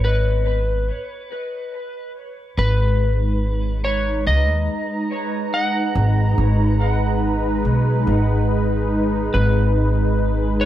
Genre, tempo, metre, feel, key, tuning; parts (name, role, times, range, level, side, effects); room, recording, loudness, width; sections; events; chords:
ambient dub; 71 BPM; 4/4; straight; G# minor; A4 = 440 Hz
electric slide guitar; melody; 0.0-10.7 s; B4 to F#5; -25 LUFS; left 1 dB; dub echo
warm analog pad; sustained chords; 0.0-10.7 s; G#3 to A#5; -23 LUFS; equal; chorus
upright bass; bass; 0.0-10.7 s; G#1 to D#2; -18 LUFS; equal
light reverb; -17 LUFS; side -12 dB against mid
0.0-2.6 A section; 2.6-10.7 B section
break 0.9-2.6
0.0 G#m7